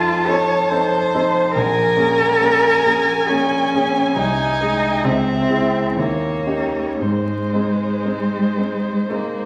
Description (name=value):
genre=classical, slow romantic movement for piano trio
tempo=56-72 BPM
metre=3/4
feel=rubato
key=Ab major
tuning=A4 = 440 Hz
part: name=warm violin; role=melody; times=0.0-9.5 s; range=C5 to A5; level=-26 LUFS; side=equal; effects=none
part: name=rich cello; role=second line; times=0.0-9.5 s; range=Ab3 to Db5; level=-20 LUFS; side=equal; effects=none
part: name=warm grand piano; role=accompaniment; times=0.0-9.5 s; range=Bb1 to A4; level=-24 LUFS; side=equal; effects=none
room=wet scoring stage reverb, RT60 1.6 s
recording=vinyl crackle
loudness=-18 LUFS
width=mono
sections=0.0-9.5 A section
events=none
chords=0.0 F7; 1.5 Bbm7; 4.2 Ab/C; 5.0 Dbm; 6.0 Eb7; 7.0 Ab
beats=0.71 | 1.55 2.40 3.29 | 4.16 5.04 5.98 | 7.00 8.06 9.10